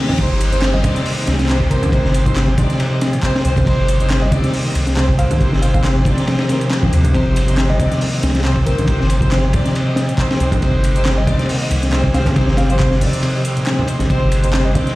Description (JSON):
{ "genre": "breakbeat, breaks", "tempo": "138 BPM", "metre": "4/4", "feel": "swing 55% on 16ths", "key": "C minor", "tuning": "A4 = 442 Hz", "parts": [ { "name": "reed electric piano", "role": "riff", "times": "0.0-15.0 s", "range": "Bb2 to C4", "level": "-20 LUFS", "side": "equal", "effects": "fast tremolo, tube saturation" }, { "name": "reverse cymbal and downlifter", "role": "sound effects", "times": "0.0-3.7 s", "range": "none", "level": "-30 LUFS", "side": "left 1 dB", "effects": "none" }, { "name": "crunchy breakbeat drum kit", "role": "drums", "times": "0.1-15.0 s", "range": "hi-hat, kick drum, ride cymbal, snare drum", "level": "-18 LUFS", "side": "equal", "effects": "none" }, { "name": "congas", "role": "percussion", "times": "0.1-14.9 s", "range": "none", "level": "-24 LUFS", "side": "right 2 dB", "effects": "none" }, { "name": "warm chamber string section", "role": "stabs", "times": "0.2-15.0 s", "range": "C4 to Eb5", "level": "-23 LUFS", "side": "equal", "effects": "tape echo" }, { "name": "saturated sub bass", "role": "bass", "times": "0.2-14.8 s", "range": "G1 to Eb2", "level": "-18 LUFS", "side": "equal", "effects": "tube saturation" }, { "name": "house drum kit", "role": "drums", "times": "0.2-14.9 s", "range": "handclaps, hi-hat", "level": "-29 LUFS", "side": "equal", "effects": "overdrive" }, { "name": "bell-like FM electric piano", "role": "melody", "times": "0.7-14.8 s", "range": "Bb4 to F5", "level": "-29 LUFS", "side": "left 1 dB", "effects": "chorus, tremolo, small speaker sound, tape echo" }, { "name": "deep dark ambient pad", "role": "sustained chords", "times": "14.7-15.0 s", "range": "C4 to G4", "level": "-34 LUFS", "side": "right 3 dB", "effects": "none" } ], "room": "light reverb", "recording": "played on a big sound system in a bare room, stone room reverb, vinyl crackle", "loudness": "-13 LUFS", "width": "side -18 dB against mid", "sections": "0.2-15.0 A section", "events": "break 0.0, 13.2-14.1; reverse cymbal 0.0; drop 0.2-15.0", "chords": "0.2 Cm" }